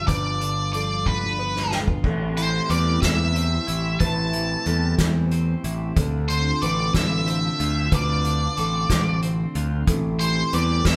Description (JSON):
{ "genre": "post-rock", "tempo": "61 BPM (dotted quarters)", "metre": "6/8", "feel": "straight", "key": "A minor", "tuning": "A4 = 441 Hz", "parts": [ { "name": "octave-fuzz lead guitar", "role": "melody", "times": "0.0-11.0 s", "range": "B4 to A5", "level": "-27 LUFS", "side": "equal", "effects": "distortion" }, { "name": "phased analog pad", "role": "sustained chords", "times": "0.0-11.0 s", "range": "D3 to D5", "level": "-36 LUFS", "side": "equal", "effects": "phaser, chorus" }, { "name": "felt-muted upright piano", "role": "arpeggios", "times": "0.0-11.0 s", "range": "A4 to C5", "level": "-38 LUFS", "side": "equal", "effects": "none" }, { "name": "twelve-string electric guitar", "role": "arpeggios", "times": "0.0-11.0 s", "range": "G2 to F4", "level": "-34 LUFS", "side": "equal", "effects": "none" }, { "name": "growling picked electric bass", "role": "bass", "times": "0.0-11.0 s", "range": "G1 to E2", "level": "-26 LUFS", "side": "equal", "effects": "overdrive" }, { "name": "soft-mallet drum kit", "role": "drums", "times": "0.1-11.0 s", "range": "crash cymbal, hi-hat, kick drum, snare drum, toms", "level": "-27 LUFS", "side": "equal", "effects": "none" } ], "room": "moderate stone room reverb, RT60 1.1 s", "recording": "band playing live in one room", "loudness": "-22 LUFS", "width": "mono", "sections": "0.0-2.0 A section; 2.0-11.0 A section", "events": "drum fill 1.1-2.0", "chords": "0.0 G7; 2.0 Am7; 6.0 Dm7; 9.9 Am7" }